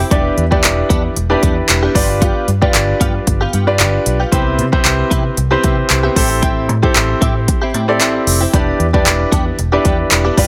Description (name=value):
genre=dance-pop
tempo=114 BPM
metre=4/4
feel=straight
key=unclear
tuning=A4 = 439 Hz
part: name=direct-recorded clean electric guitar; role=riff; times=0.0-10.5 s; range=B3 to G4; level=-24 LUFS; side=equal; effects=analog chorus
part: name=vintage muted fingered electric bass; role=bass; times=0.0-10.5 s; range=E1 to C3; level=-20 LUFS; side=equal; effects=sidechain pumping
part: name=clear concert grand piano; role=accompaniment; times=0.1-10.5 s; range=C4 to D5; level=-19 LUFS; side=equal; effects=sidechain pumping
part: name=deep house drum kit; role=drums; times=0.1-10.5 s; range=handclaps, hi-hat, kick drum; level=-17 LUFS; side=equal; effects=none
room=little or no reverb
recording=none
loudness=-14 LUFS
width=mono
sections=0.0-10.5 A section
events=none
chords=0.1 Em7; 2.0 G7; 4.3 Cmaj7; 6.2 Am7; 8.5 Em7